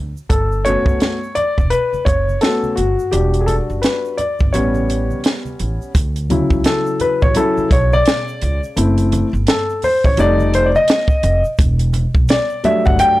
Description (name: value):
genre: hip hop, jazz-hop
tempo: 85 BPM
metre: 4/4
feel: swing 60% on 16ths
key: D major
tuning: A4 = 439 Hz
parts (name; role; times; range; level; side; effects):
- upright bass; bass; 0.0-13.0 s; E1 to D2; -19 LUFS; equal; transformer saturation
- egg shaker and congas; percussion; 0.2-13.2 s; none; -31 LUFS; right 4 dB; none
- dark concert grand piano; accompaniment; 0.3-13.2 s; C#3 to G5; -16 LUFS; left 1 dB; plate reverb
- compact cocktail drum kit; drums; 0.3-13.2 s; hi-hat, kick drum, snare drum; -17 LUFS; right 1 dB; none
room: light reverb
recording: dry, gritty hardware recording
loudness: -14 LUFS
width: side -17 dB against mid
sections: 0.0-5.9 A section; 5.9-13.2 B section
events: grand piano solo 0.0-5.9, 5.9-13.2; kick muted 4.5-5.9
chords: 0.3 Gmaj9#11; 3.1 Em7; 4.5 A7; 5.9 Dmaj9; 8.8 F#m7b5; 10.2 F9; 11.6 Em11